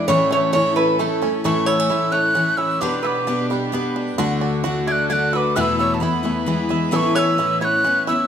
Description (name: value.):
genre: acoustic folk duo or small band.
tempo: 131 BPM.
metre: 3/4.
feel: straight.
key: A major.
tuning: A4 = 440 Hz.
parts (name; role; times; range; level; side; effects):
metal-body resonator slide guitar; second line; 0.0-8.3 s; E4 to D5; -22 LUFS; right 2 dB; none.
picked steel-string acoustic guitar; accompaniment; 0.0-8.3 s; E2 to B4; -22 LUFS; left 4 dB; none.
rich chamber string section; sustained chords; 0.0-8.3 s; D2 to B4; -29 LUFS; right 1 dB; none.
bluegrass banjo; arpeggios; 0.0-8.3 s; D3 to F#4; -27 LUFS; right 8 dB; none.
breathy mellow mid whistle; melody; 1.5-8.3 s; A5 to G#6; -20 LUFS; right 1 dB; none.
room: moderate recital hall reverb, RT60 1.5 s.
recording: close, detailed microphones.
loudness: -17 LUFS.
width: side -8 dB against mid.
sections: 0.0-1.4 A section; 1.4-8.3 B section.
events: resonator guitar played with a steel bar solo 0.0-1.4.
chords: 0.1 A; 2.8 G/B; 4.2 D; 5.6 Esus4; 6.5 E; 6.9 Aadd9.